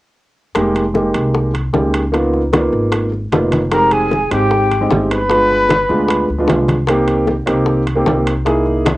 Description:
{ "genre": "Afro-Cuban jazz", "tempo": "152 BPM", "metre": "4/4", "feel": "straight", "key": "F minor", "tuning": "A4 = 442 Hz", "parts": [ { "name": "upright bass", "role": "bass", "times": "0.5-9.0 s", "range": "F1 to D2", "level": "-20 LUFS", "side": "equal", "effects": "none" }, { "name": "bongos", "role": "percussion", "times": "0.5-9.0 s", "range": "none", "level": "-22 LUFS", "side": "left 4 dB", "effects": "none" }, { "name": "congas", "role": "percussion", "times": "0.5-9.0 s", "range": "none", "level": "-22 LUFS", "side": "left 1 dB", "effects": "none" }, { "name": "dark concert grand piano", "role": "accompaniment", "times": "0.6-8.9 s", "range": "Ab3 to G#4", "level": "-16 LUFS", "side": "right 1 dB", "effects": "cassette tape" }, { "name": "timbales", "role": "percussion", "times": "0.6-9.0 s", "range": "none", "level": "-25 LUFS", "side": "right 3 dB", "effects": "none" }, { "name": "breathy trumpet", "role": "melody", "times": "3.7-6.3 s", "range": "G4 to B4", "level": "-17 LUFS", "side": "left 1 dB", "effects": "cassette tape, analog delay" }, { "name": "breathy mellow jazz flute", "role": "second line", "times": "3.7-6.3 s", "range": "G5 to B5", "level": "-18 LUFS", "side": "equal", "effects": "cassette tape" } ], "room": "moderate studio reverb, RT60 0.5 s", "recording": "home recording on cassette", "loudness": "-13 LUFS", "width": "side -17 dB against mid", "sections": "0.6-3.7 A section; 3.7-9.0 B section", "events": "none", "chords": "0.6 Fm11; 2.1 Db13; 3.7 Fm9; 5.3 G7b9; 6.9 Cm7; 8.5 C7alt", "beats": "| 0.55 0.95 1.35 1.74 | 2.14 2.54 2.93 3.33 | 3.72 4.12 4.52 4.91 | 5.31 5.70 6.10 6.49 | 6.89 7.29 7.68 8.07 | 8.47 8.87" }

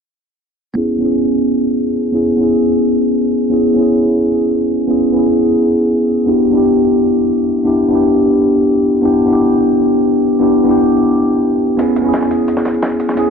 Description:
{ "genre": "liquid drum and bass", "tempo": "174 BPM", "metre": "4/4", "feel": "straight", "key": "unclear", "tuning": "A4 = 440 Hz", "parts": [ { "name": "bell-like tine electric piano", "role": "accompaniment", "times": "0.7-13.3 s", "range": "B3 to G#4", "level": "-11 LUFS", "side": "equal", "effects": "wide subtle chorus, tape echo" }, { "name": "dusty soul sampler-style drum kit", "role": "drums", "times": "11.8-13.3 s", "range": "ride cymbal, snare drum", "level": "-23 LUFS", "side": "right 1 dB", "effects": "high-pass filter on cymbals, high-pass filter on snare" }, { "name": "electronic hi-hat", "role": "drums", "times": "11.8-13.2 s", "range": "none", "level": "-32 LUFS", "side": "equal", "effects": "overdrive" } ], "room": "wet digital room reverb, RT60 1.3 s", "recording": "dark, warm production, low-pass filter", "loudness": "-11 LUFS", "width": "side -6 dB against mid", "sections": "0.8-13.3 A section", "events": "filter sweep 0.8-13.3", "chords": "0.8 E6/B; 6.3 G6/B; 11.8 E6/B", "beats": "| 0.76 1.10 1.45 1.79 | 2.14 2.48 2.83 3.17 | 3.52 3.86 4.21 4.55 | 4.90 5.24 5.59 5.93 | 6.28 6.62 6.96 7.31 | 7.66 8.00 8.34 8.69 | 9.03 9.38 9.72 10.07 | 10.41 10.76 11.10 11.45 | 11.79 12.14 12.48 12.83 | 13.17" }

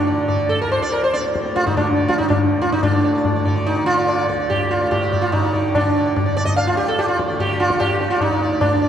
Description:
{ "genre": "indian classical, Hindustani", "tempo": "144 BPM", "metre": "7/4", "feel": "straight", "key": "D raga bhairavi", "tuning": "A4 = 439 Hz", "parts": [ { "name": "sitar", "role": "melody", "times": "0.0-8.9 s", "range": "D4 to F5", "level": "-18 LUFS", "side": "right 1 dB", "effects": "none" }, { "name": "tanpura", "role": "drone", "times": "0.0-8.9 s", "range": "D2 to D3", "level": "-27 LUFS", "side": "equal", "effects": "none" }, { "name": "tabla", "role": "percussion", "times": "0.3-8.8 s", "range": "none", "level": "-21 LUFS", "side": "left 2 dB", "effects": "none" } ], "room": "wet cathedral reverb, RT60 4.3 s", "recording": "recorded in a church or concert hall", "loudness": "-16 LUFS", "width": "side -9 dB against mid", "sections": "0.0-2.8 A section; 2.8-8.9 B section", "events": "speeding up 0.0-8.9", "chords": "none", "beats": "0.29 0.71 1.14 1.56 1.99 2.41 | 2.83 3.25 3.67 4.09 4.51 4.92 5.34 | 5.75 6.17 6.58 6.99 7.40 7.81 8.21 | 8.62" }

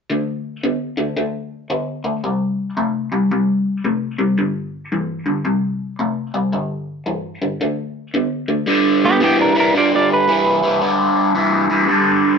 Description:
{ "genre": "blues", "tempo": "112 BPM", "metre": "4/4", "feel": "swing 64% on 8ths", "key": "G major", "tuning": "A4 = 440 Hz", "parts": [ { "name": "raw garage guitar", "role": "riff", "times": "0.1-12.4 s", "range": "G2 to B3", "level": "-17 LUFS", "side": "equal", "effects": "overdrive, phaser" }, { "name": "clean electric guitar", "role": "melody", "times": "9.0-11.2 s", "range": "B3 to D5", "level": "-18 LUFS", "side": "right 2 dB", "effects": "harmonic tremolo" } ], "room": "moderate club reverb, RT60 0.9 s", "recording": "nothing above 7.7 kHz", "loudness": "-16 LUFS", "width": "side -5 dB against mid", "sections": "0.1-8.7 A section; 8.7-12.4 B section", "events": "clean electric guitar solo 8.7-12.4", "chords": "0.1 D5; 2.2 C5; 4.4 G5; 5.5 C5; 6.5 G5; 7.6 D5; 8.7 G", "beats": "| 0.11 0.64 1.18 1.71 | 2.25 2.78 3.32 3.85 | 4.39 4.92 5.46 5.99 | 6.53 7.06 7.60 8.14 | 8.67 9.21 9.74 10.28 | 10.81 11.35 11.89" }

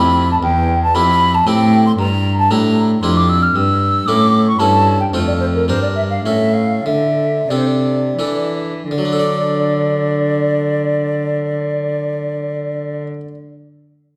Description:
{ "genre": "classical, baroque-style sonata movement with continuo", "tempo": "80-116 BPM", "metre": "3/4", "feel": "rubato", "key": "unclear", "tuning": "A4 = 440 Hz", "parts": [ { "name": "mellow hollow concert flute", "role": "melody", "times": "0.0-13.1 s", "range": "Bb4 to F6", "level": "-20 LUFS", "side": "equal", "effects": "none" }, { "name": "harpsichord", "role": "accompaniment", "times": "0.0-13.3 s", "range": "E2 to D5", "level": "-22 LUFS", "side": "equal", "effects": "none" }, { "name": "dark cello", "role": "bass", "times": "0.0-13.1 s", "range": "E2 to E3", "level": "-20 LUFS", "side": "equal", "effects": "none" } ], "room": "wet recital hall reverb, RT60 1.4 s", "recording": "none", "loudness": "-16 LUFS", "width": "mono", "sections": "0.0-8.9 A section; 8.9-13.4 B section", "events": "slowing down 4.3-8.9", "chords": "0.4 C/E; 2.0 Fmaj13; 3.6 A7/G; 5.1 Fadd11; 5.7 Gm; 6.2 A; 6.9 D5; 8.9 D", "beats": "| 0.43 0.95 1.47 | 1.99 2.50 3.03 | 3.55 4.07 4.59 | 5.13 5.68 6.25 | 6.85 7.50 8.18 | 8.91 9.65 10.40 | 11.14 11.89 12.63" }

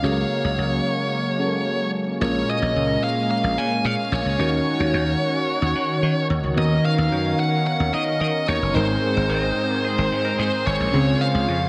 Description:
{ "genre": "pop", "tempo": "110 BPM", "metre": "4/4", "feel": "straight", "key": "unclear", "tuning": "A4 = 440 Hz", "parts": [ { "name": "high-gain lead guitar", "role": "melody", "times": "0.0-11.7 s", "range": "C5 to Ab5", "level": "-26 LUFS", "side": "equal", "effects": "distortion, tape echo" }, { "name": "soft electric-piano-like synth keys", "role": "accompaniment", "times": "0.0-11.7 s", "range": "Ab2 to C5", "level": "-27 LUFS", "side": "equal", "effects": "chorus" }, { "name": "brassy analog pad", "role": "sustained chords", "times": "0.0-11.7 s", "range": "Db3 to C5", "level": "-29 LUFS", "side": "equal", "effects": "chorus" }, { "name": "dry thumbed slap bass", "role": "bass", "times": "0.0-11.7 s", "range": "Gb1 to Eb3", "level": "-27 LUFS", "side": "equal", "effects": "none" }, { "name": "twelve-string electric guitar", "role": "second line", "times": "9.3-10.9 s", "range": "Ab4 to Eb5", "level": "-36 LUFS", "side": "equal", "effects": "tape echo" }, { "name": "crunchy overdriven guitar", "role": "accompaniment", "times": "10.9-11.7 s", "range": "Db3 to Db4", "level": "-34 LUFS", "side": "equal", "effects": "none" } ], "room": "wet cathedral reverb, RT60 5.8 s", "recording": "dreamy mix soaked in reverb", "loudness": "-22 LUFS", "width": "mono", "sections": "0.0-2.2 A section; 2.2-10.9 B section", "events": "none", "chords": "0.0 Gbadd9/Db; 2.2 Bbm7; 4.4 Ebm7; 6.6 Cbmaj7/Eb; 8.8 Abadd9; 10.9 Dbmaj7", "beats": "| 0.03 0.57 1.12 1.67 | 2.21 2.76 3.30 3.85 | 4.39 4.94 5.48 6.03 | 6.57 7.12 7.67 8.21 | 8.76 9.30 9.85 10.39 | 10.94 11.48" }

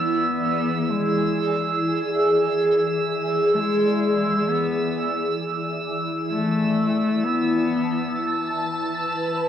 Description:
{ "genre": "ambient", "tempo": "free time", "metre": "none", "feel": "none", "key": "E mixolydian", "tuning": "A4 = 440 Hz", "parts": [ { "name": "dark cello", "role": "melody", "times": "0.0-9.5 s", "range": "E3 to B3", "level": "-26 LUFS", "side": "left 3 dB", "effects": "cassette tape, tape echo" }, { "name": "evolving wavetable pad", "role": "sustained chords", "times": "0.0-9.5 s", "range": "E3 to A5", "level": "-23 LUFS", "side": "equal", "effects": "ensemble chorus, built-in reverb, phaser, cassette tape" }, { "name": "drifting glass-harmonics texture", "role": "texture", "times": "0.0-9.5 s", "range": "E6", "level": "-27 LUFS", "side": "right 4 dB", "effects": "chorus, built-in reverb, cassette tape, plate reverb" } ], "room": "wet booth ambience, RT60 0.2 s", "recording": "home recording on cassette", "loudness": "-20 LUFS", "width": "side -9 dB against mid", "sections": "0.0-9.5 A section", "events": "filter sweep on ambient pad 0.0-9.5", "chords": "0.0 E7; 5.4 Asus2/E", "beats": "free time" }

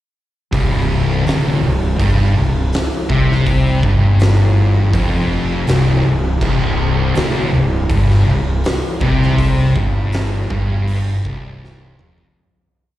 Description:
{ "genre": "stoner and doom metal", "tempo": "81 BPM", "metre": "4/4", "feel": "straight", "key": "unclear", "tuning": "A4 = 440 Hz", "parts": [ { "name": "thick fuzz guitar", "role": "riff", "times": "0.5-12.4 s", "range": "C2 to C3", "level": "-16 LUFS", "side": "left 2 dB", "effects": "distortion" }, { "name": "thick fuzz guitar", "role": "riff", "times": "0.5-12.4 s", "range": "C2 to C3", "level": "-22 LUFS", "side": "right 6 dB", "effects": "distortion" }, { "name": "fuzz fingered electric bass", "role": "bass", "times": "0.5-12.4 s", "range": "C1 to C2", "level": "-20 LUFS", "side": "equal", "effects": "overdrive" }, { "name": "oversized low-tuned drum kit", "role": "drums", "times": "0.5-12.4 s", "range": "crash cymbal, hi-hat, kick drum, snare drum, toms", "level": "-20 LUFS", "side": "equal", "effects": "none" } ], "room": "small room ambience", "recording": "live gig heard through the venue's PA, recital hall reverb", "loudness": "-13 LUFS", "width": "side -14 dB against mid", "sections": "0.5-12.4 riff", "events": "fade-out 9.4-12.4; drum fill 11.6-12.4", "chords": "0.5 C5", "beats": "| 0.53 1.26 1.99 2.73 | 3.46 4.20 4.93 5.67 | 6.41 7.15 7.90 8.64 | 9.39 10.13 10.88 11.63" }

